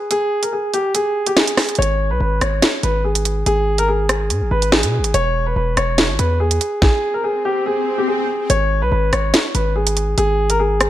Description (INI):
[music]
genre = hip hop, drill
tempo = 143 BPM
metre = 4/4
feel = half-time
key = unclear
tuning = A4 = 438 Hz
[part]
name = dark baby grand piano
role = melody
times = 0.0-10.9 s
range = G4 to C#5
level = -19 LUFS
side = equal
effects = low-pass filter, ping-pong delay
[part]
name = drill drum kit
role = drums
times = 0.1-10.9 s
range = hi-hat, kick drum, rim click, snare drum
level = -17 LUFS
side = equal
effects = none
[part]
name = distorted 808-style bass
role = bass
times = 1.8-10.9 s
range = E1 to B2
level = -19 LUFS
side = equal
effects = distortion
[part]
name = swell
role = sound effects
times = 7.2-8.5 s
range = none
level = -25 LUFS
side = left 2 dB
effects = none
[sound]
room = light reverb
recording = none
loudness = -15 LUFS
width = side -13 dB against mid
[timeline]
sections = 0.0-8.5 A section; 8.5-10.9 B section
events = break 0.0-1.8; swell 7.2-8.5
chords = 0.0 N.C.; 5.1 E; 8.5 N.C.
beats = | 0.11 0.53 0.95 1.36 | 1.78 2.21 2.62 3.04 | 3.46 3.88 4.30 4.72 | 5.14 5.56 5.98 6.40 | 6.82 7.24 7.66 8.08 | 8.50 8.92 9.34 9.76 | 10.18 10.60